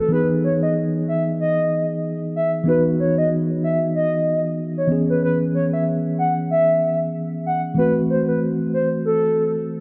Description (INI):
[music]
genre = afrobeats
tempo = 94 BPM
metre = 4/4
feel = swing 58% on 16ths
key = E major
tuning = A4 = 439 Hz
[part]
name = hollow clarinet-like synth lead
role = melody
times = 0.0-9.5 s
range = A4 to F#5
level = -23 LUFS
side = equal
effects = chorus, delay
[part]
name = mellow tine electric piano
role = accompaniment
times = 0.0-9.8 s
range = E3 to G#4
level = -23 LUFS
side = equal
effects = none
[sound]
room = moderate lush hall reverb, RT60 2.8 s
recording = dark, warm production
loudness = -20 LUFS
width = mono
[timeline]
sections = 0.1-9.8 A section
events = none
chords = 0.1 Emaj7; 4.9 C#m7; 7.8 Am6